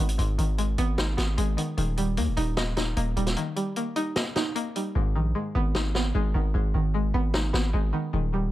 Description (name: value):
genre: hip hop, trap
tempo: 151 BPM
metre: 4/4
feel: half-time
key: G# harmonic minor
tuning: A4 = 440 Hz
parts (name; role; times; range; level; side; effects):
- string-like resonator pluck; accompaniment; 0.0-8.5 s; G#2 to D#5; -29 LUFS; equal; chorus, low-pass filter, tape echo
- distorted 808-style bass; bass; 0.0-8.5 s; D#1 to D#2; -25 LUFS; equal; distortion
- vintage drum kit; drums; 0.1-7.6 s; hi-hat, snare drum; -30 LUFS; equal; none
room: small room ambience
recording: echo-heavy mix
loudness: -24 LUFS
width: side -15 dB against mid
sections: 0.0-8.5 A section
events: break 3.4-5.0; hi-hats muted 5.0-8.5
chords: 0.0 G#m; 1.8 D#; 5.0 G#m